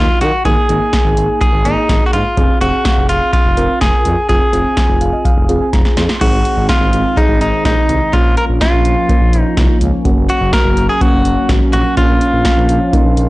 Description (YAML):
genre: synth-pop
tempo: 125 BPM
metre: 4/4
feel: straight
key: unclear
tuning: A4 = 442 Hz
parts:
  - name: direct-recorded clean electric guitar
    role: melody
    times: 0.0-13.3 s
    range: Eb4 to Bb4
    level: -16 LUFS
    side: equal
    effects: slapback echo
  - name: mellow FM electric piano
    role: accompaniment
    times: 0.0-13.3 s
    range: Gb3 to C6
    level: -19 LUFS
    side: right 1 dB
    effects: chorus
  - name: smooth gliding synth bass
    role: bass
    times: 0.0-13.3 s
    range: F1 to Eb3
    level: -18 LUFS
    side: equal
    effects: transformer saturation
  - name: electro analog drum machine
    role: drums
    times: 0.2-13.3 s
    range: crash cymbal, hi-hat, kick drum, snare drum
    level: -14 LUFS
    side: equal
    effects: none
  - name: chorused pulse-width pad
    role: sustained chords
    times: 6.2-13.3 s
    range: Eb3 to Db4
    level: -21 LUFS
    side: equal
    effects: none
room: light reverb, digital ambience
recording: blown-out, overdriven recording, overdrive, nothing above 10.4 kHz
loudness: -10 LUFS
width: side -19 dB against mid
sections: 0.0-6.2 A section; 6.2-13.3 B section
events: FM electric piano fill 4.8-6.2; drum fill 5.7-6.2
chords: 0.5 Absus2; 2.4 Fm; 6.2 Ab; 8.1 Bbm; 10.1 Gb; 12.0 Bbm